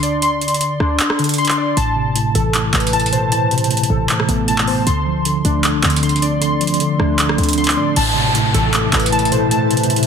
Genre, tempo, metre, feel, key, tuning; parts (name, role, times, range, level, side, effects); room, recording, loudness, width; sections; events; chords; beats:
hip hop, trap; 155 BPM; 4/4; half-time; A minor; A4 = 440 Hz
warbly lo-fi synth keys; arpeggios; 0.0-10.1 s; D3 to C6; -19 LUFS; left 2 dB; chorus, digital delay
short 808-style bass; bass; 0.0-10.1 s; A1 to A2; -22 LUFS; equal
booming analog drum machine; drums; 0.0-10.1 s; crash cymbal, handclaps, hi-hat, rim click; -20 LUFS; right 1 dB
mellow tine electric piano; accompaniment; 1.8-10.1 s; A2 to D4; -18 LUFS; right 1 dB; medium stereo tremolo
swell and downlifter; sound effects; 7.1-10.1 s; -24 LUFS; equal
glassy FM pad; sustained chords; 8.6-10.1 s; E4 to A5; -23 LUFS; left 6 dB; ensemble chorus, built-in reverb, phaser
light reverb, digital ambience; dense, heavily limited modern master; -14 LUFS; side -6 dB against mid
0.0-8.0 A section; 8.0-10.1 B section
break 0.0-1.8; kick muted 1.0-1.8
0.0 Csus2; 1.8 Amadd9; 4.9 Dm7; 8.0 Amadd9
| 0.22 0.61 1.00 1.38 | 1.77 2.16 2.54 2.93 | 3.32 3.71 4.09 4.48 | 4.87 5.25 5.64 6.03 | 6.42 6.80 7.19 7.58 | 7.96 8.35 8.74 9.12 | 9.51 9.90